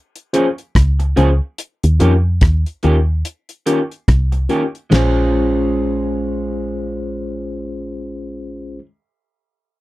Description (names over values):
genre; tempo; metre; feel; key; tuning
lovers rock reggae; 72 BPM; 4/4; swing 59% on 16ths; Bb minor; A4 = 440 Hz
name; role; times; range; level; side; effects
damped 70s drum kit; drums; 0.2-5.2 s; crash cymbal, hi-hat, kick drum, rim click, snare drum; -16 LUFS; equal; none
mellow tine electric piano; accompaniment; 0.3-8.8 s; Db4 to C5; -20 LUFS; left 3 dB; medium stereo tremolo
electric guitar through a small old amp; stabs; 0.3-8.9 s; Eb3 to Ab4; -22 LUFS; right 4 dB; none
woody FM bass; bass; 0.8-8.8 s; Bb1 to F2; -16 LUFS; equal; none
room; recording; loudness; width
little or no reverb; dry, close 1970s-style studio recording; -15 LUFS; side -18 dB against mid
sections
0.0-4.9 A section; 4.9-8.3 B section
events
none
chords
0.0 Bbm7; 1.6 Eb7; 4.9 Bbm7